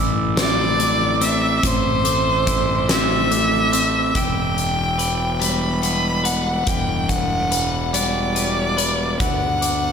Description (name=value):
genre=post-rock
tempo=48 BPM (dotted quarters)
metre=6/8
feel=straight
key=unclear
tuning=A4 = 439 Hz
part: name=glockenspiel with rubber mallets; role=arpeggios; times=0.0-4.2, 9.6-9.9 s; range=D6 to E6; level=-29 LUFS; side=right 4 dB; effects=slapback echo, tape echo
part: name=twelve-string electric guitar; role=arpeggios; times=0.0-9.9 s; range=A2 to B4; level=-25 LUFS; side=left 3 dB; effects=slapback echo, tape echo
part: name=fuzz fingered electric bass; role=bass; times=0.0-9.9 s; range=E1 to D2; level=-24 LUFS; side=equal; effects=overdrive
part: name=clear violin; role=melody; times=0.4-9.9 s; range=C5 to B5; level=-21 LUFS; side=equal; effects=tape echo
part: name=huge arena drum kit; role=drums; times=0.4-9.8 s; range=hi-hat, kick drum, snare drum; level=-23 LUFS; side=left 1 dB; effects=none
room=moderate lush hall reverb, RT60 2.6 s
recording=big arena sound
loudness=-17 LUFS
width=side -6 dB against mid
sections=0.0-4.2 A section; 4.2-9.9 B section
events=none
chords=0.0 Am; 4.2 Em7; 9.2 Bm/D